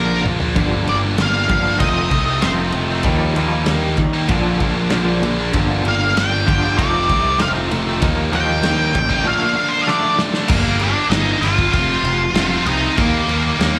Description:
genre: quiet-loud alternative rock.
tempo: 96 BPM.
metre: 4/4.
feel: straight.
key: G minor.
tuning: A4 = 441 Hz.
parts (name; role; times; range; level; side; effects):
octave-fuzz lead guitar; melody; 0.0-13.8 s; Bb3 to G5; -22 LUFS; equal; distortion, digital delay.
twangy electric guitar; arpeggios; 0.0-10.5 s; G2 to Eb4; -27 LUFS; equal; tremolo, slapback echo.
scooped high-gain guitar; riff; 0.0-13.8 s; F2 to Eb4; -25 LUFS; equal; distortion, slapback echo.
fuzz picked electric bass; bass; 0.0-13.8 s; F1 to Eb3; -23 LUFS; equal; overdrive.
loose indie drum kit; drums; 0.3-13.8 s; crash cymbal, kick drum, ride cymbal, snare drum, toms; -25 LUFS; equal; none.
overdriven electric guitar; riff; 0.6-10.5 s; F2 to Eb4; -28 LUFS; equal; slapback echo.
room: small room reverb.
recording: live gig heard through the venue's PA, club reverb.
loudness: -17 LUFS.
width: mono.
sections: 0.0-10.5 A section; 10.5-13.8 B section.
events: drum fill 0.0-0.6, 9.9-10.5; lead electric guitar solo 0.0-10.5.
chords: 0.0 Bb; 0.6 Gm7; 1.8 F7; 3.1 Ebadd9; 4.3 Bb; 5.5 Gm7; 6.8 F7; 8.0 Ebadd9; 9.3 Bbmaj7; 9.9 Dm; 10.5 Gm7; 11.7 F7; 13.0 Eb.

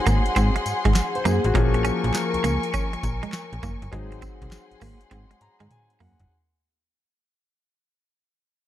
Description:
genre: R&B, new jack swing.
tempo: 101 BPM.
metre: 4/4.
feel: swing 66% on 16ths.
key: unclear.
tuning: A4 = 437 Hz.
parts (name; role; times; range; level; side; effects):
clear concert grand piano; accompaniment; 0.0-6.3 s; F3 to Bb5; -29 LUFS; left 4 dB; none.
muted studio string section; sustained chords; 0.0-6.3 s; Ab4 to Db6; -28 LUFS; left 2 dB; none.
clean electric guitar; riff; 0.1-6.2 s; Ab3 to Db4; -29 LUFS; right 6 dB; analog chorus.
slap-like FM bass; bass; 0.1-6.3 s; Gb1 to Ab2; -25 LUFS; equal; none.
booming analog drum machine; drums; 0.1-6.3 s; handclaps, hi-hat, kick drum, snare drum, tambourine, toms; -25 LUFS; equal; none.
room: digital ambience.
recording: dark, warm production.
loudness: -20 LUFS.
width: side -12 dB against mid.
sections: 0.0-6.3 A section.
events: fade-out 0.0-6.3; drum fill 5.1-6.3; grand piano fill 5.1-6.3.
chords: 0.0 Ab7; 1.5 Bbm7; 3.9 Ab7.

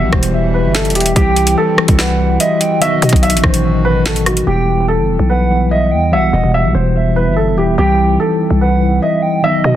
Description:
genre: hip hop, drill.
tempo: 145 BPM.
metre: 4/4.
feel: half-time.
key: E harmonic minor.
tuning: A4 = 440 Hz.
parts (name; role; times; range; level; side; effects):
dark concert grand piano; melody; 0.0-9.8 s; F#4 to E5; -17 LUFS; equal; tape echo.
mellow tine electric piano; accompaniment; 0.0-9.8 s; B2 to G4; -17 LUFS; equal; medium stereo tremolo.
hand-pumped harmonium; sustained chords; 0.0-4.5 s; B2 to F#4; -26 LUFS; left 3 dB; none.
growling 808-style bass; bass; 0.0-9.7 s; D#1 to B2; -15 LUFS; equal; none.
drill drum kit; drums; 0.1-4.5 s; hi-hat, kick drum, rim click, snare drum; -14 LUFS; equal; soft clipping on snare.
hollow clarinet-like synth lead; second line; 0.3-9.8 s; D#5 to G5; -21 LUFS; right 4 dB; chorus, tape echo.
room: digital ambience.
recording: dense, heavily limited modern master.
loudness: -11 LUFS.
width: side -12 dB against mid.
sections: 0.0-4.5 A section; 4.5-9.8 B section.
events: none.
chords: 0.0 Em; 1.2 C; 2.8 B; 4.5 Em; 7.8 C.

